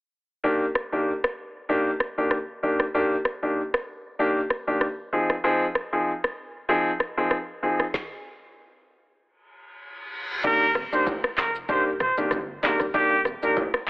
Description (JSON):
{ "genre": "afrobeats", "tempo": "96 BPM", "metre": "4/4", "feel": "swing 55% on 16ths", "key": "Eb major", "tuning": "A4 = 435 Hz", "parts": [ { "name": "clear grand piano", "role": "accompaniment", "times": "0.4-13.6 s", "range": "Eb3 to Ab4", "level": "-24 LUFS", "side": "equal", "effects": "none" }, { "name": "deep house drum kit", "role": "drums", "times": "0.8-13.9 s", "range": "crash cymbal, handclaps, kick drum, rim click, shaker, snare drum, toms", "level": "-27 LUFS", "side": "equal", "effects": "none" }, { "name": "reverse cymbal", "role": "sound effects", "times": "9.7-10.4 s", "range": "none", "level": "-34 LUFS", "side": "equal", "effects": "none" }, { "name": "sub bass with octave", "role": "bass", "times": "10.4-13.4 s", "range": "Eb1 to G1", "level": "-49 LUFS", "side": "equal", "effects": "none" }, { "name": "congas and bongos", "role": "percussion", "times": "10.4-13.9 s", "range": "none", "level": "-35 LUFS", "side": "right 1 dB", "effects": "none" }, { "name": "clear trumpet", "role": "melody", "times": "10.5-13.6 s", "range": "G4 to C5", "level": "-24 LUFS", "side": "right 1 dB", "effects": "none" } ], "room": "light reverb", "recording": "telephone sound", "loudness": "-22 LUFS", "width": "side -26 dB against mid", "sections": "0.4-10.4 A section; 10.4-13.9 B section", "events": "stop 7.9-10.4; reverse cymbal 9.7-10.4", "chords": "0.4 Ebmaj7; 5.1 Ab6; 10.4 Ebmaj7" }